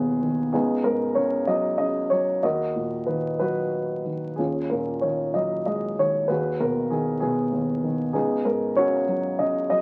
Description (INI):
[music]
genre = classical, lyrical solo piano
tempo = 63 BPM (dotted quarters)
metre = 6/8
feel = rubato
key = unclear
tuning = A4 = 440 Hz
[part]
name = warm grand piano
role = solo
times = 0.0-9.8 s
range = Db2 to Eb5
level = -24 LUFS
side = equal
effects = none
[sound]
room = wet studio reverb, RT60 0.6 s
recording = very old 78 rpm record, vinyl crackle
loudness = -25 LUFS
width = mono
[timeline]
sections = 0.0-9.8 A section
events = none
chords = 0.0 Abm7/Eb; 0.5 Db9sus4; 2.4 Bmaj7/D#; 4.4 Ebm11; 6.3 Abm7/Eb; 8.1 Db9sus4